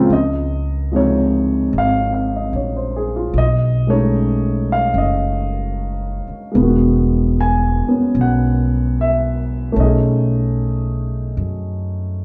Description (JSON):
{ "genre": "jazz ballad", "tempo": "75 BPM", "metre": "4/4", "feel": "swing 66% on 8ths", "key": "Db major", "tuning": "A4 = 440 Hz", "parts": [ { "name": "warm concert grand piano", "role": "accompaniment", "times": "0.0-12.2 s", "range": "Db2 to G#5", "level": "-20 LUFS", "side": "equal", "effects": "none" }, { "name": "upright bass", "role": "bass", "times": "0.0-12.2 s", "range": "E1 to Gb2", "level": "-21 LUFS", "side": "equal", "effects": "none" } ], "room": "wet stone room reverb, RT60 1.2 s", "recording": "band playing live in one room", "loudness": "-18 LUFS", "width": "mono", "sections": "0.1-12.2 A section", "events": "none", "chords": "0.1 Dbmaj7; 3.3 Cb13; 6.6 Emaj7; 9.8 Cb13" }